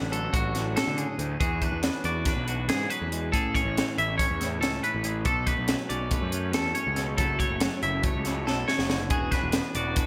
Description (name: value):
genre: math rock and midwest emo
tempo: 280 BPM (eighths)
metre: 9/8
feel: straight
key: unclear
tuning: A4 = 438 Hz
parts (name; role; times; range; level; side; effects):
- twangy electric guitar; accompaniment; 0.0-10.1 s; F#2 to A4; -36 LUFS; equal; none
- twangy electric guitar; arpeggios; 0.0-10.1 s; F#4 to F#5; -32 LUFS; equal; subtle chorus
- fuzz picked electric bass; bass; 0.0-10.0 s; E1 to D3; -34 LUFS; equal; overdrive
- crisp fusion drum kit; drums; 0.1-10.1 s; hi-hat, kick drum, snare drum; -31 LUFS; equal; gated reverb
room: moderate lush hall reverb, RT60 1.9 s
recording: bright 1980s-style digital production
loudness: -27 LUFS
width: mono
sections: 0.0-1.4 A section; 1.4-10.1 B section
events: drum fill 8.5-9.1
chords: 0.0 Dmaj7; 1.4 E9; 3.3 Amaj7; 5.3 B7sus2; 7.2 F#m7; 9.1 E9